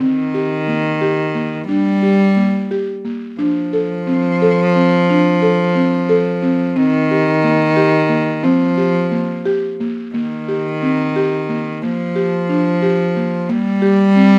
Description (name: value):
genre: contemporary instrumental, chamber music in an uneven meter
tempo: 179 BPM (eighths)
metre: 5/8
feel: straight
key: unclear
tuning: A4 = 440 Hz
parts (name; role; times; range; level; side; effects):
- clear cello; second line; 0.0-14.4 s; Eb3 to G3; -18 LUFS; equal; none
- buzzing marimba with soft mallets; arpeggios; 0.0-14.4 s; Bb3 to A4; -20 LUFS; equal; none
room: light reverb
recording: none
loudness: -16 LUFS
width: mono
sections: 0.0-10.1 A section; 10.1-14.4 B section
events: none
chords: 0.0 Eb6; 1.7 Gm; 3.4 Dm7; 6.8 Eb6; 11.8 Gm7; 13.5 Gmadd11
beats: | 0.01 0.34 0.68 1.01 1.35 | 1.69 2.02 2.37 2.71 3.05 | 3.39 3.73 4.08 4.41 4.75 | 5.09 5.42 5.76 6.09 6.43 | 6.76 7.09 7.43 7.77 8.10 | 8.44 8.78 9.12 9.46 9.80 | 10.14 10.48 10.81 11.15 11.48 | 11.82 12.15 12.49 12.82 13.16 | 13.49 13.83 14.16